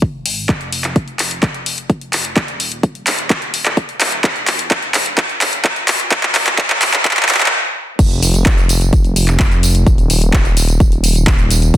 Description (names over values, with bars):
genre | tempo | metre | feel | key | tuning
EDM, festival progressive house | 128 BPM | 4/4 | straight | F minor | A4 = 442 Hz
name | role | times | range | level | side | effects
detuned saw bass | bass | 0.0-11.8 s | Eb1 to Ab1 | -16 LUFS | equal | sidechain pumping
electronic kick drum | drums | 0.0-11.8 s | none | -14 LUFS | equal | none
house drum kit | drums | 0.3-11.8 s | crash cymbal, handclaps, hi-hat, tambourine | -15 LUFS | equal | none
room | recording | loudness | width
light reverb, digital ambience | dense, heavily limited modern master, high-pass filter | -12 LUFS | side -13 dB against mid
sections
0.0-8.0 A section; 8.0-11.8 B section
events
build-up 0.0-8.0; drum fill 0.5-7.5; stop 7.5-8.0; drop 8.0-11.8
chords
none